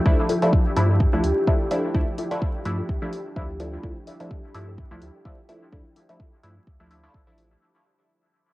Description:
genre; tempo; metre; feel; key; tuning
dub techno; 127 BPM; 4/4; swing 55% on 16ths; D minor; A4 = 440 Hz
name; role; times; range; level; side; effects
deep dark ambient pad; sustained chords; 0.0-7.6 s; F3 to G4; -30 LUFS; equal; chorus, built-in reverb, sidechain pumping
filtered dub chord stab; stabs; 0.0-7.6 s; F3 to E4; -26 LUFS; equal; chorus, phaser, sidechain pumping, dub echo
wind-like tuned noise texture; texture; 0.0-7.6 s; G4; -37 LUFS; right 1 dB; built-in reverb, sidechain pumping
pure sine sub bass; bass; 0.1-7.6 s; A1 to G2; -25 LUFS; equal; sidechain pumping
electronic kick drum; drums; 0.1-7.2 s; none; -22 LUFS; equal; cassette tape
filtered dub chord stab; riff; 0.3-6.7 s; F4 to E5; -31 LUFS; left 4 dB; none
electronic hi-hat; drums; 0.3-7.5 s; none; -42 LUFS; equal; cassette tape
room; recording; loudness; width
light reverb; home recording on cassette, vinyl crackle; -20 LUFS; side -18 dB against mid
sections
0.0-7.6 A section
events
fade-out 0.0-7.6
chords
0.0 Dmadd9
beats
| 0.06 0.53 1.00 1.47 | 1.95 2.42 2.89 3.36 | 3.83 4.31 4.78 5.25 | 5.72 6.20 6.67 7.14

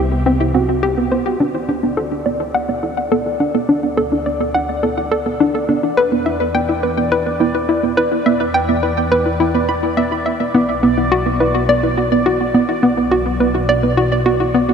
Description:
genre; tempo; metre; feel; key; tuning
ambient, sequencer-driven space music; 105 BPM; 4/4; straight; unclear; A4 = 440 Hz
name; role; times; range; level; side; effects
soft round pluck; arpeggios; 0.0-14.7 s; B3 to F#4; -20 LUFS; right 5 dB; chorus, auto-pan, tape echo
hollow square pluck; riff; 0.0-14.7 s; B3 to B5; -16 LUFS; left 1 dB; chorus, tape echo
fat analog bass; bass; 0.0-14.7 s; B1 to E2; -24 LUFS; left 1 dB; none
bubbling stepped-filter texture; texture; 1.6-14.7 s; D5; -24 LUFS; left 2 dB; chorus, built-in reverb
room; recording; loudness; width
wet huge ambient reverb, RT60 8.1 s; dreamy mix soaked in reverb, cassette tape; -14 LUFS; side -6 dB against mid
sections
0.0-1.4 A section; 1.4-14.7 B section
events
fade-in on analog synth bass 1.4-14.7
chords
0.0 C; 1.4 D; 6.0 Em7; 10.5 Bm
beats
0.26 0.83 | 1.40 1.97 2.54 3.12 | 3.69 4.26 4.83 5.40 | 5.97 6.54 7.12 7.69 | 8.26 8.83 9.40 9.97 | 10.54 11.12 11.69 12.26 | 12.83 13.40 13.97 14.54

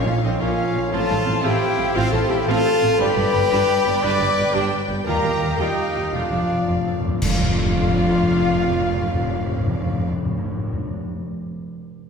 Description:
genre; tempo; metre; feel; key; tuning
cinematic, heroic adventure film score; 115 BPM (dotted quarters); 6/8; straight; F lydian; A4 = 439 Hz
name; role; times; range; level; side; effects
clear symphonic violin section; melody; 0.0-10.1 s; Eb5 to D6; -32 LUFS; left 4 dB; none
clear clarinet; second line; 0.0-10.1 s; D4 to D5; -31 LUFS; left 2 dB; none
mellow hollow silver concert flute; second line; 0.0-10.1 s; Eb5 to D6; -30 LUFS; left 1 dB; none
warm symphonic violin section; second line; 0.0-10.1 s; C5 to G5; -31 LUFS; left 3 dB; none
warm symphonic viola section; accompaniment; 0.0-10.1 s; G3 to F4; -30 LUFS; right 2 dB; none
mellow French horn section; sustained chords; 0.0-10.1 s; Eb4 to D5; -23 LUFS; left 2 dB; none
concert harp; arpeggios; 0.0-11.0 s; G2 to Db6; -30 LUFS; left 4 dB; none
mellow trumpet; stabs; 0.1-10.1 s; C4 to B4; -27 LUFS; right 2 dB; none
rich symphonic cello section; bass; 0.1-10.1 s; Eb2 to Bb2; -27 LUFS; right 2 dB; none
rich symphonic double bass section; bass; 0.1-10.1 s; F1 to Eb2; -27 LUFS; right 1 dB; none
timpani; percussion; 6.1-10.8 s; F2; -26 LUFS; left 1 dB; none
clash cymbals and concert bass drum; percussion; 7.2-7.9 s; none; -28 LUFS; equal; none
room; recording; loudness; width
wet concert hall reverb, RT60 2.1 s; heard from further back in the room; -18 LUFS; side -5 dB against mid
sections
0.0-7.2 A section; 7.2-9.3 B section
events
timpani fill 6.1-7.2; band accent 7.2-7.6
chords
0.0 Bbm; 0.9 F/A; 3.0 G; 5.1 Ebadd9; 6.1 F6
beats
0.42 | 0.94 1.45 | 1.97 2.48 | 3.00 3.52 | 4.03 4.55 | 5.07 5.60 | 6.14 6.68 | 7.22 7.74 | 8.26 8.79

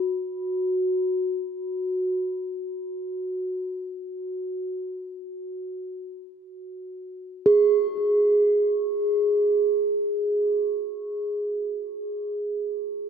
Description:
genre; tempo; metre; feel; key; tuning
world meditative, free-time meditation music; free time; none; none; unclear; A4 = 439 Hz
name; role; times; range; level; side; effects
bronze singing bowl; solo; 0.0-13.1 s; F#4 to G#4; -23 LUFS; right 1 dB; diffuse ambient delay
room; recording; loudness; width
moderate huge ambient reverb, RT60 4.1 s; dark, warm production; -23 LUFS; side -7 dB against mid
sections
0.0-13.1 A section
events
none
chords
none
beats
free time

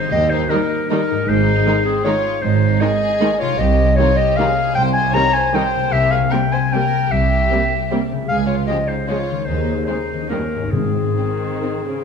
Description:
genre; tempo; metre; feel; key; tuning
classical; 127-167 BPM; 3/4; rubato; Ab major; A4 = 440 Hz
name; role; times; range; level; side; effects
warm symphonic violin section; melody; 0.0-12.0 s; C4 to Db5; -26 LUFS; left 5 dB; none
warm clarinet; second line; 0.0-12.0 s; Ab4 to Bb5; -19 LUFS; left 1 dB; none
concert harp; arpeggios; 0.0-12.0 s; Ab2 to Eb5; -24 LUFS; left 10 dB; none
dark studio cello section; bass; 0.1-11.1 s; C2 to Ab2; -24 LUFS; right 4 dB; none
warm symphonic double bass section; bass; 0.1-11.1 s; Ab1 to Eb2; -23 LUFS; right 4 dB; none
timpani; percussion; 0.1-0.7, 10.7-11.4 s; Ab2 to Eb3; -27 LUFS; left 3 dB; none
warm symphonic violin section; second line; 0.5-11.7 s; Ab3 to Eb4; -30 LUFS; left 2 dB; none
warm symphonic viola section; accompaniment; 0.5-12.0 s; Db3 to Bb3; -25 LUFS; right 2 dB; none
room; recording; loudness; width
moderate scoring stage reverb, RT60 2.0 s; dark, warm production; -15 LUFS; side -6 dB against mid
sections
0.0-12.0 A section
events
none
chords
0.1 Eb; 1.3 Ab; 3.6 Cm; 5.9 C7; 8.3 Db; 9.5 Ab/Eb; 10.3 Eb7; 10.7 Ab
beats
| 0.12 0.50 0.90 | 1.28 1.66 2.05 | 2.42 2.80 3.20 | 3.58 3.97 4.37 | 4.75 5.13 5.53 | 5.91 6.31 6.72 | 7.10 7.50 7.90 | 8.29 8.68 9.09 | 9.47 9.88 10.30 | 10.73 11.18 11.63

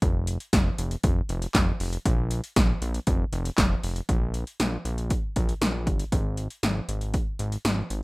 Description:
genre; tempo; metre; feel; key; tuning
synth-pop; 118 BPM; 4/4; straight; unclear; A4 = 441 Hz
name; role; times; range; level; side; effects
fat analog bass; bass; 0.0-8.0 s; F1 to Bb1; -28 LUFS; equal; none
80s electronic pad drums; drums; 0.0-8.0 s; handclaps, hi-hat, kick drum, snare drum; -24 LUFS; equal; none
room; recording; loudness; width
little or no reverb; rough home demo mix; -24 LUFS; side -25 dB against mid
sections
0.0-4.1 A section; 4.1-8.0 B section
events
none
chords
none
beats
| 0.02 0.53 1.04 1.55 | 2.06 2.56 3.07 3.58 | 4.09 4.60 5.11 5.61 | 6.12 6.63 7.14 7.65

